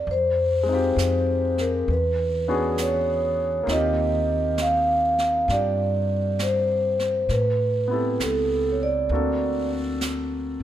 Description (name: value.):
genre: jazz ballad.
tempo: 66 BPM.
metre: 4/4.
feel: swing 66% on 8ths.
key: unclear.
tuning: A4 = 440 Hz.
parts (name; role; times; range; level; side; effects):
vibraphone with soft mallets; melody; 0.0-9.7 s; A4 to F5; -23 LUFS; right 1 dB; none.
warm concert grand piano; accompaniment; 0.0-10.6 s; Ab3 to C5; -28 LUFS; left 3 dB; none.
upright bass; bass; 0.0-10.6 s; Db2 to A2; -27 LUFS; left 1 dB; none.
jazz brush drum kit; drums; 0.1-10.6 s; brushed snare drum, hi-hat, snare drum; -35 LUFS; right 3 dB; none.
room: light reverb.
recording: none.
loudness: -20 LUFS.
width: side -11 dB against mid.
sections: 0.0-10.6 A section.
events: none.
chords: 0.1 Fm7; 1.9 E13; 3.7 Eb69; 7.3 Am7; 9.1 D7b13.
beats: | 0.08 0.98 1.89 2.79 | 3.69 4.59 5.49 6.39 | 7.30 8.20 9.10 10.01.